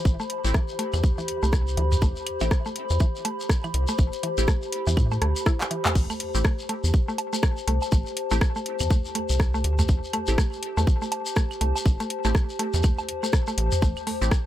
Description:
minimal techno; 122 BPM; 4/4; swing 59% on 16ths; A minor; A4 = 440 Hz
warbly tape-like pad; texture; 0.0-14.5 s; G4 to B5; -31 LUFS; left 2 dB; chorus, built-in reverb, sidechain pumping
rubbery square bass; bass; 0.1-14.3 s; A1 to A2; -24 LUFS; equal; tube saturation, sidechain pumping
electronic kick drum; drums; 0.1-14.4 s; -22 LUFS; equal
shekere; percussion; 0.1-14.4 s; -35 LUFS; left 4 dB
mallet-like synth pluck; riff; 0.2-14.1 s; E3 to E4; -32 LUFS; right 1 dB; chorus, cassette tape, sidechain pumping, tape echo
booming analog drum machine; drums; 0.3-14.4 s; crash cymbal, handclaps, hi-hat, rim click; -28 LUFS; left 1 dB
filtered dub chord stab; stabs; 0.4-14.3 s; A3 to G4; -33 LUFS; right 2 dB; phaser, digital delay
electronic toms, claves and woodblock; percussion; 0.9-14.0 s; -30 LUFS; right 2 dB; overdrive, digital delay
light reverb; -22 LUFS; side -13 dB against mid
0.0-14.5 A section
drum fill 5.6-6.0
0.0 Am7

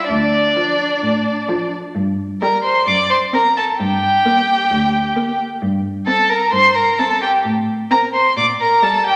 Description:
quick classical-period movement for string quartet; 130 BPM; 4/4; rubato; A4 = 440 Hz
warm violin; melody; 0.0-9.2 s; D5 to D6; -18 LUFS; equal
rich violin; second line; 0.0-9.2 s; D4 to D5; -24 LUFS; equal
warm cello; bass; 0.1-8.7 s; D2 to Bb2; -24 LUFS; equal
warm viola; accompaniment; 0.6-9.2 s; F3 to C4; -28 LUFS; equal
wet scoring stage reverb, RT60 1.7 s; -16 LUFS; mono
0.0-9.2 A section
0.1 Dm; 2.0 Gmadd11; 2.9 D7b13/F#; 3.8 Gm; 5.6 C5/G; 7.4 Am; 8.4 Gm/Bb

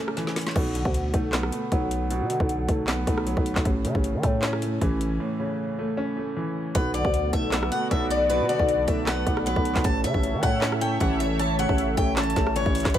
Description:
hip hop, trap; 155 BPM; 4/4; half-time; B minor; A4 = 443 Hz
warm concert grand piano; accompaniment; 0.0-13.0 s; A2 to C#4; -28 LUFS; right 1 dB; low-pass filter
trap drum kit; drums; 0.1-13.0 s; crash cymbal, handclaps, hi-hat, kick drum, rim click, snare drum; -27 LUFS; equal
growling 808-style bass; bass; 0.6-13.0 s; A1 to E3; -27 LUFS; equal
picked steel-string acoustic guitar; melody; 6.7-13.0 s; B4 to A5; -26 LUFS; left 2 dB
sweeping resonant pad; sustained chords; 6.8-13.0 s; A3 to E5; -32 LUFS; right 1 dB; chorus
little or no reverb; -22 LUFS; side -11 dB against mid
0.0-6.8 A section; 6.8-13.0 B section
break 0.0-0.6, 5.2-6.8; drum fill 0.2-0.6
0.0 A; 0.6 Bm7; 3.7 A; 6.8 Bm7; 9.8 A

